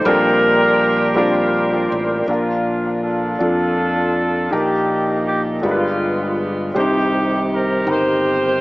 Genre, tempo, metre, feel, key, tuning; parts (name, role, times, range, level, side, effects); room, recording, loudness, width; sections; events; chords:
slow gospel; 54 BPM (dotted quarters); 6/8; straight; Bb major; A4 = 440 Hz
dark horn section; melody; 0.0-8.6 s; Ab3 to C5; -18 LUFS; equal; tape echo
warm baby grand piano; accompaniment; 0.0-8.6 s; G2 to C5; -20 LUFS; equal; tape echo
percussive tonewheel organ; sustained chords; 0.0-2.3, 6.7-8.6 s; Eb3 to C6; -23 LUFS; right 1 dB; slow rotary speaker, chorus vibrato
modern bright fingered electric bass; bass; 0.0-8.6 s; G1 to F2; -26 LUFS; equal
light reverb; echo-heavy mix, small speaker sound; -15 LUFS; side -21 dB against mid
0.0-2.3 A section; 2.3-8.6 B section
0.1 Bb69; 2.3 Bb; 4.5 Eb/Bb; 5.6 G7b9; 6.8 Cm